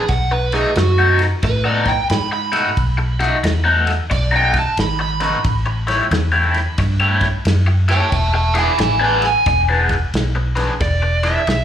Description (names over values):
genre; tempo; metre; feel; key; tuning
electric blues shuffle; 90 BPM; 4/4; swing 64% on 8ths; E mixolydian; A4 = 440 Hz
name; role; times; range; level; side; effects
overdriven slide guitar; second line; 0.0-9.6 s; F#4 to B5; -20 LUFS; right 4 dB; slapback echo
overdriven electric guitar; riff; 0.0-11.5 s; B2 to C#5; -19 LUFS; left 3 dB; phaser, slapback echo
vintage muted fingered electric bass; bass; 0.1-11.6 s; E1 to A2; -18 LUFS; equal; none
warm soul drum kit; drums; 0.1-11.6 s; kick drum, ride cymbal, snare drum; -24 LUFS; equal; none
dark smooth lead guitar; melody; 10.8-11.6 s; D5 to E5; -19 LUFS; right 3 dB; overdrive, slapback echo
room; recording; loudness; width
small room ambience; live gig heard through the venue's PA, club reverb; -14 LUFS; side -9 dB against mid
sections
0.0-10.8 A section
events
electric slide guitar solo 0.0-10.8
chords
0.1 B7; 5.4 A7; 8.1 E7